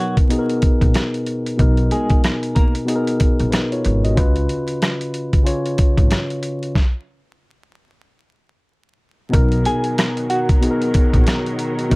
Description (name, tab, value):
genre	hip hop, boom-bap hip-hop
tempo	93 BPM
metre	4/4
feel	swing 59% on 16ths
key	B lydian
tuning	A4 = 441 Hz
part	semi-hollow electric guitar	melody	0.0-2.7, 9.7-10.5 s	F#3 to G#5	-24 LUFS	right 1 dB	tremolo, high-pass filter, low-pass filter, tape echo, plate reverb
part	mellow tine electric piano	accompaniment	0.0-12.0 s	B2 to D#5	-21 LUFS	left 1 dB	high-pass filter, low-pass filter, plate reverb
part	dusty soul sampler-style drum kit	drums	0.2-12.0 s	hi-hat, kick drum, rim click, snare drum	-16 LUFS	equal	none
part	upright bass	bass	0.8-12.0 s	G#1 to C#2	-19 LUFS	equal	none
part	muted symphonic string section	sustained chords	9.3-12.0 s	D#3 to A#4	-28 LUFS	right 1 dB	high-pass filter, low-pass filter, plate reverb
room	light reverb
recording	dark, warm production, vinyl crackle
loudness	-15 LUFS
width	side -25 dB against mid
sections	0.0-9.3 A section; 9.3-12.0 B section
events	stop 6.8-9.3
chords	0.0 Bmaj7; 4.2 C#7; 6.8 N.C.; 9.3 Bmaj7